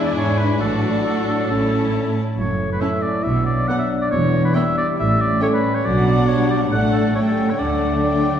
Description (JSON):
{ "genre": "quick classical-period movement for symphony orchestra", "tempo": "138 BPM", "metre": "4/4", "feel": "straight", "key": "D major", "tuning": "A4 = 440 Hz", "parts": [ { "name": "dark chamber violin section", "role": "melody", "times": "0.0-8.4 s", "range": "F#5 to A5", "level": "-32 LUFS", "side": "left 2 dB", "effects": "none" }, { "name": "clear oboe", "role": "second line", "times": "0.0-8.4 s", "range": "A4 to F#5", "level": "-23 LUFS", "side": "equal", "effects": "none" }, { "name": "rich chamber violin section", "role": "second line", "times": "0.0-8.4 s", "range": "C#4 to F#4", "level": "-27 LUFS", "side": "left 4 dB", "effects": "none" }, { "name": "rich chamber viola section", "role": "accompaniment", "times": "0.0-8.4 s", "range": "F#3 to D4", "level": "-26 LUFS", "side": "equal", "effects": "none" }, { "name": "dark French horn section", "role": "sustained chords", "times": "0.0-8.4 s", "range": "F#3 to E4", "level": "-24 LUFS", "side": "left 2 dB", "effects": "none" }, { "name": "rich symphonic cello section", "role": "bass", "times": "0.0-8.4 s", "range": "E2 to D3", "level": "-21 LUFS", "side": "right 2 dB", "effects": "none" }, { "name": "clear studio double bass section", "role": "bass", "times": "0.6-8.0 s", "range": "E1 to D2", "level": "-26 LUFS", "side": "right 1 dB", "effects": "none" } ], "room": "wet concert hall reverb, RT60 2.1 s", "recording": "heard from further back in the room", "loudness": "-16 LUFS", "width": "side -9 dB against mid", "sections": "0.0-8.4 A section", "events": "none", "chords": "0.0 E7; 0.6 D/A; 1.5 A; 2.4 F#m7; 3.3 Bm; 4.1 Em7; 5.0 A7; 5.8 Bm; 6.7 D/A; 7.2 A7; 7.6 D", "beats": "0.16 | 0.61 1.05 1.50 1.94 | 2.38 2.82 3.25 3.69 | 4.12 4.56 4.99 5.42 | 5.85 6.28 6.71 7.15 | 7.60 8.05" }